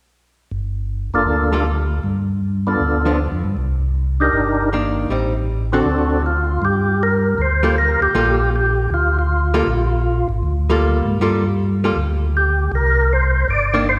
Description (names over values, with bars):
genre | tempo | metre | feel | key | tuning
soul jazz organ trio | 157 BPM | 4/4 | swing 64% on 8ths | G minor | A4 = 440 Hz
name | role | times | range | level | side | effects
mellow tonewheel organ | bass | 0.5-14.0 s | F#1 to Ab2 | -21 LUFS | equal | chorus vibrato, slow rotary speaker
percussive tonewheel organ | melody | 1.1-14.0 s | Bb3 to D5 | -21 LUFS | equal | slow rotary speaker, overdrive, chorus vibrato
archtop guitar, miked and amplified | accompaniment | 1.5-13.9 s | D3 to A4 | -24 LUFS | equal | none
room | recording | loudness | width
wet scoring stage reverb, RT60 1.9 s | recorded in a church or concert hall | -18 LUFS | mono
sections
0.5-6.6 A section; 6.6-14.0 B section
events
none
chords
0.5 Gm9; 2.0 G7; 3.6 Cm9; 5.1 Am7b5; 5.9 D7; 6.6 Gm9; 12.7 C7sus2